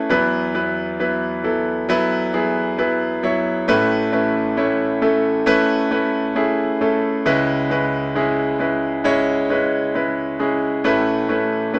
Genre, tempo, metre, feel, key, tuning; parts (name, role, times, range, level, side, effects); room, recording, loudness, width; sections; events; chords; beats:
pop; 67 BPM; 4/4; straight; A4 = 440 Hz
clear concert grand piano; solo; 0.0-11.8 s; A1 to C#5; -19 LUFS; equal
wet studio reverb, RT60 0.6 s; -19 LUFS; mono
0.0-11.8 A section
0.1 Esus2; 3.7 Aadd9; 7.3 C#m7; 10.8 Aadd9
| 0.10 1.00 1.89 2.79 | 3.68 4.58 5.47 6.37 | 7.26 8.16 9.06 9.95 | 10.85 11.74